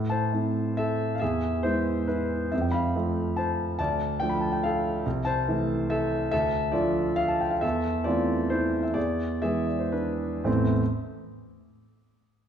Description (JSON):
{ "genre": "classical, piano waltz", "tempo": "107-152 BPM", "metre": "3/4", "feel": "rubato", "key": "A minor", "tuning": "A4 = 437 Hz", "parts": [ { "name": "warm concert grand piano", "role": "solo", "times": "0.0-10.8 s", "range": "A1 to B5", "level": "-24 LUFS", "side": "equal", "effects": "none" } ], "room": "wet recital hall reverb, RT60 1.6 s", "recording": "dark, warm production", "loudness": "-24 LUFS", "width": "side -8 dB against mid", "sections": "0.0-10.5 A section; 10.5-11.9 B section", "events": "slowing down 7.0-10.5", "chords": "0.0 Am; 1.2 E; 2.5 F; 3.8 Dm; 5.0 Am/C; 6.3 Dm; 7.6 Am/E; 9.0 E7; 10.5 Am", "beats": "0.32 0.77 | 1.21 1.64 2.09 | 2.52 2.94 3.37 | 3.79 4.21 4.64 | 5.05 5.46 5.90 | 6.32 6.74 7.19 | 7.63 8.06 8.51 | 8.96 9.42 9.94 | 10.47" }